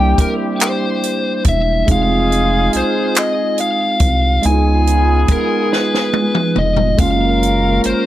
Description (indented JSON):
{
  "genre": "slow six-eight R&B",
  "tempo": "47 BPM (dotted quarters)",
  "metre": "6/8",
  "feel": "straight",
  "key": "Db major",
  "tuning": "A4 = 440 Hz",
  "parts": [
    { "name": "biting lead guitar", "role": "melody", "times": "0.0-8.1 s", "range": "Bb4 to Ab5", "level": "-18 LUFS", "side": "left 2 dB", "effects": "overdrive, plate reverb" },
    { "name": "overdriven tine electric piano", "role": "accompaniment", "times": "0.0-8.1 s", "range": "G3 to F4", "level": "-19 LUFS", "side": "right 4 dB", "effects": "wide subtle chorus, plate reverb" },
    { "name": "warm horn section", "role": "stabs", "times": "0.0-8.1 s", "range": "G3 to Bb4", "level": "-22 LUFS", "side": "left 2 dB", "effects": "plate reverb" },
    { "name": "rubbery square bass", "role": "bass", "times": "0.0-7.9 s", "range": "E1 to Db2", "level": "-16 LUFS", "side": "equal", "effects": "none" },
    { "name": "compact cocktail drum kit", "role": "drums", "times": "0.2-8.0 s", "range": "handclaps, hi-hat, kick drum, snare drum, toms", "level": "-17 LUFS", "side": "equal", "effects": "none" }
  ],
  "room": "light reverb",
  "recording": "none",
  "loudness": "-13 LUFS",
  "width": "side -13 dB against mid",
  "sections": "0.0-8.1 A section",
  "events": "drum fill 5.7-7.0",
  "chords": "0.0 C7; 1.9 Fm7; 4.4 Db7; 7.0 Gbmaj9",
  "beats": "0.60 | 1.88 3.16 | 4.43 5.71 | 6.99"
}